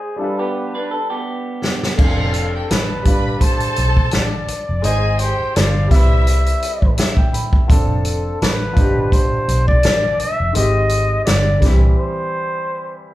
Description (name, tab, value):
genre	lush 1970s-style soul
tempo	84 BPM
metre	4/4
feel	swing 54% on 16ths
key	C major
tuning	A4 = 440 Hz
part	warm flugelhorn	melody	0.0-13.0 s	Ab4 to E5	-22 LUFS	left 1 dB	none
part	clear baby grand piano	accompaniment	0.0-13.1 s	B2 to B5	-25 LUFS	left 1 dB	none
part	electric guitar through a small old amp	riff	0.4-1.9 s	B3 to B4	-24 LUFS	right 1 dB	none
part	vintage drum kit	drums	1.6-11.8 s	crash cymbal, hi-hat, kick drum, snare drum	-17 LUFS	equal	none
part	warm studio violin section	second line	2.0-6.6 s	E4 to B5	-26 LUFS	equal	none
part	vintage muted fingered electric bass	bass	2.0-11.9 s	F1 to C2	-18 LUFS	equal	none
room	wet large studio reverb, RT60 0.9 s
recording	band playing live in one room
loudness	-14 LUFS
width	side -15 dB against mid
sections	0.0-2.0 A section; 2.0-13.1 B section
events	break 0.0-2.0, 12.0-13.1; drum fill 1.3-2.0; grand piano fill 6.6-7.7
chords	0.2 G7; 2.0 F6; 3.1 G7; 4.8 Abmaj7; 5.9 Cmaj7; 7.7 F6; 8.8 G7; 10.6 Abmaj7; 11.6 C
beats	0.56 1.27 | 1.99 2.70 3.41 4.13 | 4.84 5.56 6.27 6.98 | 7.70 8.41 9.12 9.84 | 10.55 11.27 11.98 12.69